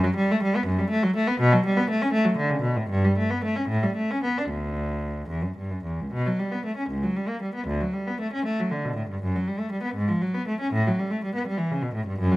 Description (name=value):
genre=classical, baroque-style suite movement for unaccompanied cello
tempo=71-83 BPM (dotted quarters)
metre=6/8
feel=rubato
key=D major, B minor from 6.1 s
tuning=A4 = 440 Hz
part: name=rich cello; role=solo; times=0.0-12.4 s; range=C#2 to D4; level=-23 LUFS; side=equal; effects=none
room=light reverb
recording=close, detailed microphones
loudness=-23 LUFS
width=side -18 dB against mid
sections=0.0-6.1 A section; 6.1-12.4 A section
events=none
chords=none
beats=0.66 | 1.40 2.13 | 2.91 3.69 | 4.49 5.29 | 6.12 6.89 | 7.68 8.45 | 9.22 9.97 | 10.74 11.47 | 12.21